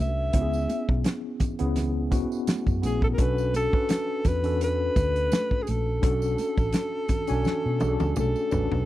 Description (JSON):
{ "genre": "lush 1970s-style soul", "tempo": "84 BPM", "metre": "4/4", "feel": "swing 54% on 16ths", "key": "B dorian", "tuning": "A4 = 441 Hz", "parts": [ { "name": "breathy alto saxophone", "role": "melody", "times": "0.0-8.9 s", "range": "G#4 to E5", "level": "-28 LUFS", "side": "equal", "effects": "none" }, { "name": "mellow tine electric piano", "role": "accompaniment", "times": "0.0-8.9 s", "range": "B3 to G#5", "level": "-30 LUFS", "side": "left 2 dB", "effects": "medium stereo tremolo" }, { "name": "vintage muted fingered electric bass", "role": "bass", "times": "0.0-8.9 s", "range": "A1 to B2", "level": "-27 LUFS", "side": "equal", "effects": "none" }, { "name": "warm soul drum kit", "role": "drums", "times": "0.3-8.9 s", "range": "hi-hat, kick drum, snare drum, toms", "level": "-26 LUFS", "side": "equal", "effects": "none" }, { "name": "tambourine", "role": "percussion", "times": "0.5-8.7 s", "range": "none", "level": "-48 LUFS", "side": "right 11 dB", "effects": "none" }, { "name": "congas", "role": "percussion", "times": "0.7-8.7 s", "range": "none", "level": "-36 LUFS", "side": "right 3 dB", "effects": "none" } ], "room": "small room ambience", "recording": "none", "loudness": "-23 LUFS", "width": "side -14 dB against mid", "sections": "0.0-8.9 A section", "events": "drum fill 7.4-8.9", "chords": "0.3 C#m7; 3.2 Bm7", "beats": "| 0.34 1.05 1.76 2.47 | 3.18 3.89 4.60 5.31 | 6.03 6.74 7.45 8.16" }